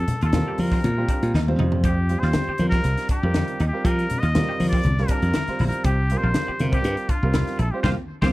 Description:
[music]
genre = electric jazz fusion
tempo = 120 BPM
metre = 4/4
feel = swing 53% on 16ths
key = unclear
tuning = A4 = 440 Hz
[part]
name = trumpet with straight mute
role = melody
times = 0.0-8.3 s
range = F4 to Eb5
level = -28 LUFS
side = left 1 dB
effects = none
[part]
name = slap bass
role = bass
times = 0.0-8.3 s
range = Bb1 to F3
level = -21 LUFS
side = equal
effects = none
[part]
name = crisp fusion drum kit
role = drums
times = 0.1-8.3 s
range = hi-hat, kick drum, snare drum, toms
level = -26 LUFS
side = equal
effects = none
[part]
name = congas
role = percussion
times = 0.1-8.3 s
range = none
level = -28 LUFS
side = left 2 dB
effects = none
[part]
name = semi-hollow electric guitar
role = stabs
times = 0.2-8.3 s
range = C4 to G4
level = -35 LUFS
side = equal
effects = ensemble chorus
[part]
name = bright grand piano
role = accompaniment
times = 0.3-8.3 s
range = G3 to C5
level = -30 LUFS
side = right 3 dB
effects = none
[sound]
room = little or no reverb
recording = none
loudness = -19 LUFS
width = side -18 dB against mid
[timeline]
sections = 0.0-8.3 A section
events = drum fill 1.3-1.8; band accent 7.8-8.3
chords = 0.0 F9sus4; 4.8 C7sus4

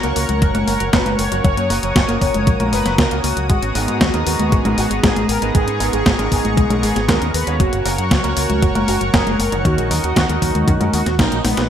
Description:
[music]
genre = italo disco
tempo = 117 BPM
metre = 4/4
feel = straight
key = G# minor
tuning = A4 = 440 Hz
[part]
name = mellow synth brass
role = melody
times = 0.0-11.7 s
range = B3 to C#5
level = -23 LUFS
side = equal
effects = chorus, ping-pong delay
[part]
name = lush unison pad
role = sustained chords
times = 0.0-11.7 s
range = B3 to D#6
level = -26 LUFS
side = right 1 dB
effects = chorus
[part]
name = wide unison pluck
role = arpeggios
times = 0.0-11.7 s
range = A#2 to D#4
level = -26 LUFS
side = left 2 dB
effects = ping-pong delay
[part]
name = clear baby grand piano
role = stabs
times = 0.0-11.7 s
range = G#2 to C#5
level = -24 LUFS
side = right 2 dB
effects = wide subtle chorus
[part]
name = fingered electric bass with an envelope filter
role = bass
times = 0.0-11.7 s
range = F#1 to G#2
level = -22 LUFS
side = equal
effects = none
[part]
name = clean 12-bit digital drum machine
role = drums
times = 0.0-11.7 s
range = congas, hi-hat, snare drum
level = -20 LUFS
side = left 1 dB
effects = overdrive, gated reverb
[part]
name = electronic kick drum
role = drums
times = 0.4-11.3 s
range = none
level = -17 LUFS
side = equal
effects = overdrive
[sound]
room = moderate plate reverb, RT60 1.6 s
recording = bright 1980s-style digital production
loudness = -14 LUFS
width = side -9 dB against mid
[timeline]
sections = 0.0-11.7 A section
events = band accent 11.2; drum fill 11.4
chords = 0.0 F#; 3.5 G#madd9; 7.6 F#; 9.7 D#m7

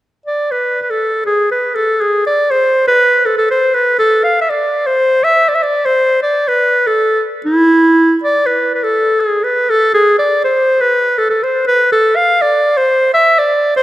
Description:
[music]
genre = klezmer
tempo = 121 BPM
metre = 2/4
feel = straight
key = unclear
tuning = A4 = 440 Hz
[part]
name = clear clarinet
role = solo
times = 0.3-13.8 s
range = E4 to F5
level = -10 LUFS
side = equal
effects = none
[sound]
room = wet lush hall reverb, RT60 2.7 s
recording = rough home demo mix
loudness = -10 LUFS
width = side -15 dB against mid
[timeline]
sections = 0.5-8.5 A section; 8.5-13.8 A section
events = none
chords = none

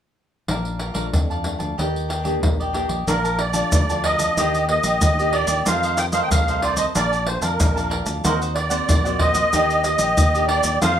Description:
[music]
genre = samba and choro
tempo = 93 BPM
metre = 4/4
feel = straight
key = Bb major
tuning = A4 = 439 Hz
[part]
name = cavaquinho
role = accompaniment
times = 0.5-11.0 s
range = D4 to A5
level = -26 LUFS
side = right 1 dB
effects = none
[part]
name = nylon-string guitar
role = accompaniment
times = 0.5-11.0 s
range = F2 to G4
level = -29 LUFS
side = left 2 dB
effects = none
[part]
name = fingered electric bass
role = bass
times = 0.5-11.0 s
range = Bb1 to F2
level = -27 LUFS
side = equal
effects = none
[part]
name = surdo, pandeiro and maracas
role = percussion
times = 0.5-11.0 s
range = none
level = -22 LUFS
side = equal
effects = none
[part]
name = musette accordion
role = melody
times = 3.1-11.0 s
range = Bb4 to G5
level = -20 LUFS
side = right 1 dB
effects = none
[sound]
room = moderate studio reverb, RT60 0.6 s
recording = minimal, uncompressed stereo recording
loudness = -18 LUFS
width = side -9 dB against mid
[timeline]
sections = 0.5-3.1 A section; 3.1-11.0 B section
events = none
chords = 0.5 Bbmaj7; 1.8 Ebmaj7; 3.1 Bbmaj7; 4.4 Ebmaj7; 5.7 F7; 7.0 Bbmaj7; 8.2 Ebm6; 9.5 Ebmaj7

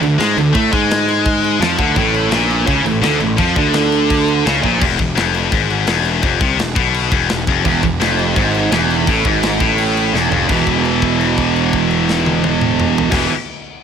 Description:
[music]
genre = heavy metal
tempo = 169 BPM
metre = 4/4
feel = straight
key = unclear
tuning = A4 = 440 Hz
[part]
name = heavy high-gain guitar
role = riff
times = 0.0-13.3 s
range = E2 to A3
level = -17 LUFS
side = left 12 dB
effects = distortion
[part]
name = tight distorted guitar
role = riff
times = 0.0-4.8, 7.6-13.3 s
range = E2 to A3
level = -17 LUFS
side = right 9 dB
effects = distortion
[part]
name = fuzz picked electric bass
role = bass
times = 0.0-13.3 s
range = E1 to A2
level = -20 LUFS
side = equal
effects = overdrive
[part]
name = tight metal drum kit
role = drums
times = 0.0-13.2 s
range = crash cymbal, kick drum, snare drum, toms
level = -20 LUFS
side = equal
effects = none
[sound]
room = light reverb, small room ambience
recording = none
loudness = -13 LUFS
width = side -7 dB against mid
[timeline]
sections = 0.0-4.8 A section; 4.8-10.5 B section; 10.5-13.3 C section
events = drum fill 4.6, 10.1-10.5; held note 10.5-13.1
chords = 0.0 D5; 2.0 Aadd11; 4.8 E; 10.5 E5

